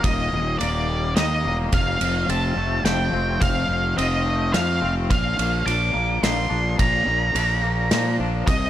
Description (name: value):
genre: post-rock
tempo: 107 BPM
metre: 3/4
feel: straight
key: unclear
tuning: A4 = 440 Hz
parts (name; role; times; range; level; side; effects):
- octave-fuzz lead guitar; melody; 0.0-8.7 s; D5 to D6; -24 LUFS; equal; distortion, digital delay
- twangy electric guitar; arpeggios; 0.0-8.7 s; Eb2 to D4; -28 LUFS; left 5 dB; tremolo, digital delay
- fuzz fingered electric bass; bass; 0.0-8.7 s; Eb1 to Bb2; -24 LUFS; equal; overdrive
- loose indie drum kit; drums; 0.0-8.6 s; kick drum, ride cymbal, snare drum; -26 LUFS; equal; none
room: small room ambience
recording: none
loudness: -19 LUFS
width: side -12 dB against mid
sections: 0.0-8.7 A section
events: none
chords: 0.0 Ebmaj7; 1.7 F; 5.1 Bb